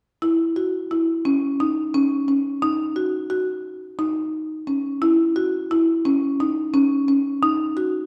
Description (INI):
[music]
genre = contemporary instrumental, contemporary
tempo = 175 BPM (eighths)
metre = 7/8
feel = straight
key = C# minor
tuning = A4 = 440 Hz
[part]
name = marimba with medium hard mallets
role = solo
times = 0.2-8.0 s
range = C#4 to F#4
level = -22 LUFS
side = equal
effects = none
[sound]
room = wet recital hall reverb, RT60 1.4 s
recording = none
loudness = -22 LUFS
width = mono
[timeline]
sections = 0.2-8.1 A section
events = none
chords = none